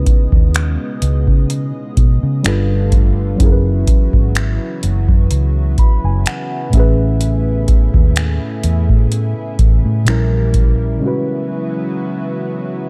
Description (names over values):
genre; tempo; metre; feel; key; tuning
contemporary R&B; 63 BPM; 4/4; swing 54% on 16ths; C# minor; A4 = 438 Hz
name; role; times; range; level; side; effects
muted felt-like synth keys; accompaniment; 0.0-12.9 s; A2 to B5; -24 LUFS; equal; chorus
lush unison pad; sustained chords; 0.0-12.9 s; B2 to D#5; -28 LUFS; equal; chorus
vintage muted fingered electric bass; bass; 0.0-11.0 s; F#1 to C#3; -18 LUFS; equal; none
booming analog drum machine; drums; 0.1-10.8 s; finger snaps, hi-hat, kick drum; -15 LUFS; equal; none
room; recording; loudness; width
little or no reverb; dark, warm production; -15 LUFS; mono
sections
0.0-12.9 A section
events
synth keys fill 5.3-7.2; break 11.0-12.9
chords
0.0 C#m9; 2.4 G9; 3.4 F#7sus4; 6.7 Amaj9; 10.1 A#dim7; 11.0 C#m7